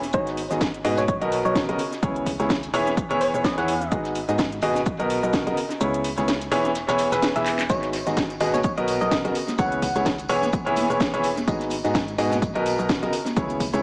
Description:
piano house; 127 BPM; 4/4; swing 56% on 16ths; G# minor; A4 = 440 Hz
organ-like FM bass; bass; 0.0-13.8 s; E1 to G#2; -36 LUFS; equal; sidechain pumping
house drum kit; drums; 0.0-13.8 s; cabasa, handclaps, hi-hat, snare drum; -32 LUFS; equal; overdrive, analog delay
soft struck synth lead; melody; 0.1-3.9, 7.7-10.1 s; C#5 to F#5; -31 LUFS; equal; chorus, phaser, analog delay
clear upright piano; riff; 0.1-13.8 s; G#2 to E5; -26 LUFS; equal; sidechain pumping, analog delay
electronic kick drum; drums; 0.1-13.7 s; -30 LUFS; equal; overdrive
modern studio drum kit; drums; 0.1-13.8 s; hi-hat, shaker, snare drum; -42 LUFS; equal
tambourine and congas; percussion; 7.7-13.8 s; -37 LUFS; equal; analog delay
moderate echo chamber reverb, RT60 2.0 s; echo-heavy mix, small speaker sound; -23 LUFS; mono
0.0-13.8 A section
kick drops out 5.8-7.7; drum fill 7.5
0.1 G#m7; 1.1 Bmaj7; 1.8 C#m7; 2.7 E6; 3.9 G#m7; 4.9 Bmaj7; 5.6 C#m7; 6.5 E6; 7.7 G#m7; 8.6 Bmaj7; 9.3 C#m7; 10.3 E6; 11.5 G#m7; 12.4 Bmaj7; 13.1 C#m7

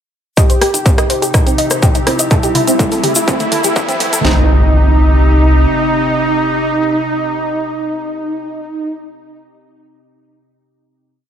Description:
melodic techno; 124 BPM; 4/4; straight; C minor; A4 = 440 Hz
soft supersaw; melody; 0.4-8.9 s; Eb4 to G4; -17 LUFS; equal; sidechain pumping, low-pass filter, digital delay
evolving wavetable pad; sustained chords; 0.8-8.9 s; C3 to G4; -21 LUFS; right 1 dB; chorus, built-in reverb, sidechain pumping
woody wave-folded pluck; arpeggios; 0.4-4.5 s; A3 to Eb5; -18 LUFS; equal; lush chorus, sidechain pumping, dub echo
round analog bass; bass; 0.4-5.7 s; G1 to C2; -10 LUFS; equal; sidechain pumping, high-pass filter
techno drum kit; drums; 0.4-4.4 s; kick drum, snare drum; -13 LUFS; equal; distortion, overdrive, studio ambience
techno drum kit; drums; 0.4-4.3 s; hi-hat, rim click, toms; -20 LUFS; equal; overdrive, studio ambience
egg shaker; percussion; 0.4-4.2 s; -19 LUFS; left 3 dB
riser and impact; sound effects; 1.6-9.0 s; -23 LUFS; equal
light reverb, digital ambience; high-pass filter; -11 LUFS; side -9 dB against mid
0.4-4.2 build; 4.2-8.1 final chord
build-up 0.4-4.2; drum fill 0.4-4.2; filter sweep on synth pluck 0.4-4.2; filter sweep on supersaw synth 0.4-4.2; filter sweep 0.4-4.2; riser 1.6-4.2
0.4 Cm; 2.3 Am7; 4.2 Cm

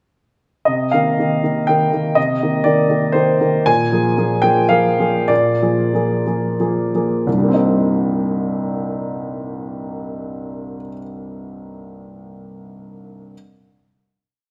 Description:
neoclassical minimalist piano; 86-125 BPM; 3/4; rubato; C minor; A4 = 439 Hz
warm upright piano; solo; 0.7-13.3 s; C2 to Ab5; -18 LUFS; equal
wet concert hall reverb, RT60 2.4 s; recorded in a church or concert hall; -17 LUFS; mono
0.7-7.3 A section; 7.3-11.1 final chord
slowing down 2.9-7.3
0.7 Cm7; 3.7 Bb7; 7.3 Cm7

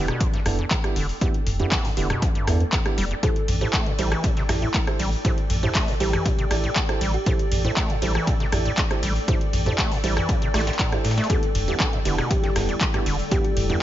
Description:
acid house; 119 BPM; 4/4; straight; A4 = 439 Hz
acid bass, square; riff; 0.0-13.8 s; E2 to A3; -29 LUFS; equal; overdrive, cassette tape, sidechain pumping, digital delay
dark concert grand piano; stabs; 0.0-13.8 s; B3 to D5; -31 LUFS; right 6 dB; digital delay
warm sub bass; bass; 0.0-13.7 s; E1 to A2; -25 LUFS; equal; tube saturation, sidechain pumping
granular cloud pad; texture; 0.0-13.8 s; A4 to G5; -33 LUFS; left 1 dB; built-in reverb, sidechain pumping
booming analog drum machine; drums; 0.1-13.8 s; handclaps, hi-hat, ride cymbal, rim click, toms; -27 LUFS; equal
dusty soul sampler-style drum kit; drums; 0.2-13.7 s; hi-hat, snare drum; -37 LUFS; left 1 dB
electronic kick drum; drums; 0.2-13.4 s; -24 LUFS; equal
thumb-piano-like synth pluck; melody; 3.2-7.6, 11.3-13.5 s; E4 to A4; -32 LUFS; left 1 dB; chorus, tape echo
warbly tape-like pad; sustained chords; 11.3-13.8 s; D3 to E4; -34 LUFS; right 1 dB; chorus, built-in reverb, sidechain pumping
little or no reverb; nothing above 7.5 kHz; -20 LUFS; side -13 dB against mid
0.0-13.8 A section
0.0 Em7; 3.2 Am7; 11.3 Em7

